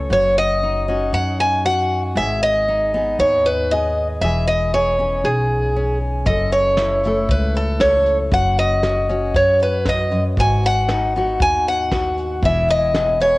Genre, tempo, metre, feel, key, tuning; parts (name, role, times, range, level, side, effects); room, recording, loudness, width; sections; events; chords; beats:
acoustic folk duo or small band; 117 BPM; 4/4; straight; F# dorian; A4 = 441 Hz
fingerpicked steel-string acoustic guitar; accompaniment; 0.0-13.4 s; F#2 to A4; -25 LUFS; left 1 dB; cassette tape
upright bass; bass; 0.0-13.4 s; E1 to F#2; -22 LUFS; equal
picked acoustic archtop guitar; melody; 0.1-13.4 s; G#4 to G#5; -17 LUFS; equal; cassette tape
soft brush drum kit; drums; 6.3-13.3 s; hi-hat, kick drum, snare drum; -25 LUFS; equal; cassette tape
moderate spring reverb, RT60 2.5 s; home recording on cassette; -15 LUFS; side -20 dB against mid
0.0-6.3 A section; 6.3-13.4 A section
0.1 D#m7/F#; 2.2 G#m; 4.2 E6; 6.3 F#m7; 8.3 Badd9/F# (rootless); 10.4 G#m7; 12.4 E
| 0.11 0.62 1.13 1.65 | 2.16 2.67 3.19 3.70 | 4.21 4.73 5.24 5.75 | 6.27 6.78 7.30 7.81 | 8.32 8.84 9.35 9.86 | 10.38 10.89 11.40 11.91 | 12.43 12.94